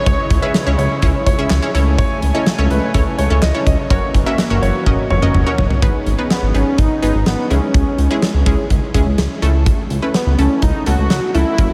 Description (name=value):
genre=synth-pop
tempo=125 BPM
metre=4/4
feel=straight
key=unclear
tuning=A4 = 440 Hz
part: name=unison lead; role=melody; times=0.0-0.7, 6.3-11.7 s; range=B3 to C#5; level=-24 LUFS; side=equal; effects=tape echo
part: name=analog pluck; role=accompaniment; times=0.0-11.7 s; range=F#3 to E5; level=-24 LUFS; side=equal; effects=chorus
part: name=chorused pulse-width pad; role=sustained chords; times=0.0-5.8 s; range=C#3 to G#5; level=-28 LUFS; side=equal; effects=none
part: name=clear concert grand piano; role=second line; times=0.1-5.4 s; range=B4 to E5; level=-27 LUFS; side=equal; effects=tape echo
part: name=chorused synth bass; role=bass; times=0.1-11.7 s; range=F#1 to C#2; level=-19 LUFS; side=equal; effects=none
part: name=huge arena drum kit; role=drums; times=0.1-11.7 s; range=handclaps, hi-hat, kick drum, snare drum, toms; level=-20 LUFS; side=equal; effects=none
room=moderate huge ambient reverb, RT60 8.1 s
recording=dreamy mix soaked in reverb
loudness=-16 LUFS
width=mono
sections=0.0-5.8 A section; 5.8-11.7 B section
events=drum fill 4.9-5.8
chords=0.0 C#m; 1.7 Amaj7/C#; 3.9 F#7; 5.8 G#m; 7.5 C#m; 9.4 A/C#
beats=| 0.06 0.54 1.02 1.50 | 1.98 2.46 2.94 3.42 | 3.90 4.38 4.86 5.34 | 5.82 6.30 6.78 7.26 | 7.74 8.22 8.70 9.18 | 9.66 10.14 10.62 11.10 | 11.58